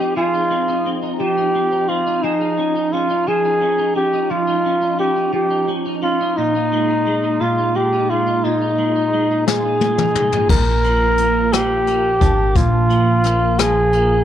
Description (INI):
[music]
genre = six-eight pop ballad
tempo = 58 BPM (dotted quarters)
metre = 6/8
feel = straight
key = unclear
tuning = A4 = 436 Hz
[part]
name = warm flugelhorn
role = melody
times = 0.0-14.2 s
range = Eb4 to Bb4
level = -17 LUFS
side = equal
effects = none
[part]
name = clean electric guitar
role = accompaniment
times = 0.0-14.2 s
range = Bb2 to Ab4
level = -21 LUFS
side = right 1 dB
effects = ensemble chorus
[part]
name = jazz brush drum kit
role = drums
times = 9.5-14.1 s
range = crash cymbal, hi-hat, kick drum, rim click, snare drum, toms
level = -20 LUFS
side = left 4 dB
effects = none
[part]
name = upright bass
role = bass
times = 10.5-14.2 s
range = Ab1 to Bb1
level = -19 LUFS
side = equal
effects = none
[sound]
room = moderate spring reverb, RT60 2.0 s, studio reverb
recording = 1960s-style stereo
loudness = -15 LUFS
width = side -10 dB against mid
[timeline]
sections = 0.0-10.5 A section; 10.5-14.2 B section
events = drum fill 9.5-10.5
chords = 0.0 Fm7; 2.2 Dbadd9/F; 6.4 Bb7sus4; 10.5 Bb